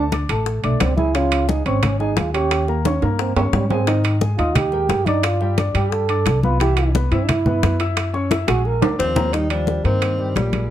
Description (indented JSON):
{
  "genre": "Afro-Cuban jazz",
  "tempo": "176 BPM",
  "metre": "4/4",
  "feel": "straight",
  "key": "unclear",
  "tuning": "A4 = 440 Hz",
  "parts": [
    { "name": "mellow trombone", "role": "second line", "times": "0.0-10.7 s", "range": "Bb2 to Bb4", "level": "-23 LUFS", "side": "right 6 dB", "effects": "none" },
    { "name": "warm upright piano", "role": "accompaniment", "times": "0.0-10.7 s", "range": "Db3 to E6", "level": "-24 LUFS", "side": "left 3 dB", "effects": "none" },
    { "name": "upright bass", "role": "bass", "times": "0.0-10.7 s", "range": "Ab1 to Ab2", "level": "-21 LUFS", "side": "equal", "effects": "none" },
    { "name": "bongos", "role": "percussion", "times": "0.1-10.5 s", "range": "none", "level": "-27 LUFS", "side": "left 10 dB", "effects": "none" },
    { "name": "congas", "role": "percussion", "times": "0.1-10.7 s", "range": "none", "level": "-24 LUFS", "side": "left 1 dB", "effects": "none" },
    { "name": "timbales", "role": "percussion", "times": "0.1-10.7 s", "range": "none", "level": "-26 LUFS", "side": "right 8 dB", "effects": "none" },
    { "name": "mellow tenor saxophone", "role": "melody", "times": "9.0-10.7 s", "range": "G3 to Eb4", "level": "-23 LUFS", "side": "left 2 dB", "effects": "none" }
  ],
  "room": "light reverb",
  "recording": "none",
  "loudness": "-16 LUFS",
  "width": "side -11 dB against mid",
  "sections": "0.0-9.3 A section; 9.3-10.7 B section",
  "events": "trombone solo 0.0-9.3; drum fill 2.9-3.9, 8.5-9.3",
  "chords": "0.0 D5; 1.1 Dbadd9; 2.5 Eb7; 3.9 Absus2; 5.2 G9; 6.6 Cmaj7; 8.0 Gb9; 8.7 Bb7; 9.3 Eb69",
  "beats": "0.12 0.46 0.80 | 1.15 1.49 1.83 2.17 | 2.51 2.85 3.19 3.53 | 3.87 4.22 4.56 4.90 | 5.24 5.58 5.92 6.26 | 6.60 6.95 7.29 7.63 | 7.97 8.31 8.65 8.99 | 9.33 9.68 10.02 10.36 | 10.70"
}